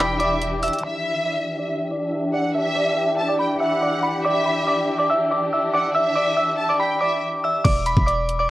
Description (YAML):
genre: hip hop, trap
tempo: 141 BPM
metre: 4/4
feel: half-time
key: E minor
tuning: A4 = 439 Hz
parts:
  - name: glassy synth bell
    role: melody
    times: 0.0-8.5 s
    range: D5 to B6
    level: -21 LUFS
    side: equal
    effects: chorus, low-pass filter, cassette tape
  - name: warm symphonic violin section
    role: second line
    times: 0.0-7.2 s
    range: E5 to A5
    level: -26 LUFS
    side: equal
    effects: cassette tape, analog delay
  - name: warm studio string section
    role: sustained chords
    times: 0.0-7.6 s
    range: E3 to G4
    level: -26 LUFS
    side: left 1 dB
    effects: low-pass filter, cassette tape
  - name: warm 808-style bass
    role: bass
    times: 0.0-0.7, 7.6-8.5 s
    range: E1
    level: -25 LUFS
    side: equal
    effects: none
  - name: trap drum kit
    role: drums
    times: 0.2-0.8, 7.6-8.4 s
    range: crash cymbal, hi-hat, kick drum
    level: -21 LUFS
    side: equal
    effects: cassette tape
room: moderate spring reverb, RT60 1.7 s, digital ambience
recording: home recording on cassette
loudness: -19 LUFS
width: side -16 dB against mid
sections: 0.8-7.6 A section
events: filter sweep 0.8-7.6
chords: 0.0 Em7; 7.6 E5